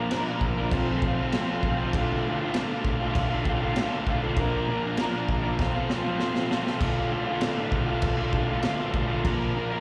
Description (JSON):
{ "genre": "garage rock duo or trio", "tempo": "98 BPM", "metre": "4/4", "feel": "straight", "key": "D minor", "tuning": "A4 = 440 Hz", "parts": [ { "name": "overdriven combo organ", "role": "sustained chords", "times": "0.0-9.8 s", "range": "A4 to F5", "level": "-39 LUFS", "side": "equal", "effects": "none" }, { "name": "raw garage guitar", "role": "riff", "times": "0.0-9.8 s", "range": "D2 to Bb4", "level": "-29 LUFS", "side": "equal", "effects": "overdrive, slapback echo" }, { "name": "raw garage drum kit", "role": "drums", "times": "0.1-9.4 s", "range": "crash cymbal, kick drum, snare drum, splash cymbal", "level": "-30 LUFS", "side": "equal", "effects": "none" } ], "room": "light reverb", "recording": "live gig heard through the venue's PA, club reverb", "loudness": "-27 LUFS", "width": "mono", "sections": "0.0-9.8 A section", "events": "drum fill 5.6-6.8", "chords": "0.0 Bb; 0.7 F; 1.9 Dm; 4.4 Bb; 5.6 F; 6.8 Dm; 9.3 Bb", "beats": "0.10 0.71 1.33 | 1.94 2.55 3.16 3.77 | 4.38 4.99 5.60 6.21 | 6.82 7.43 8.04 8.65 | 9.26" }